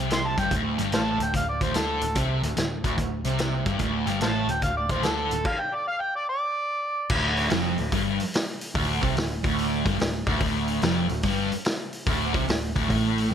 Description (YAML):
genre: blues rock power trio and southern rock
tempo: 145 BPM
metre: 4/4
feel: swing 66% on 8ths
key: D minor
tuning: A4 = 440 Hz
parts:
  - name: sludgy distorted guitar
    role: riff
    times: 0.0-13.3 s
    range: D2 to D3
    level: -26 LUFS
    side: equal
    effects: overdrive
  - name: vintage muted picked electric bass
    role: bass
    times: 0.0-13.3 s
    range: D1 to D2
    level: -31 LUFS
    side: equal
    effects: none
  - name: overdriven harmonica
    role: melody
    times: 0.1-7.1 s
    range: A4 to C6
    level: -28 LUFS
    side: right 1 dB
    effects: none
  - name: vintage drum kit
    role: drums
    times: 0.1-13.2 s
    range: crash cymbal, hi-hat, kick drum, snare drum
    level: -28 LUFS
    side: equal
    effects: none
room: light reverb, small room ambience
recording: none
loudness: -23 LUFS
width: side -8 dB against mid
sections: 0.0-7.1 A section; 7.1-13.3 B section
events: stop 5.5-7.1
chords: 0.0 D5; 7.1 Dm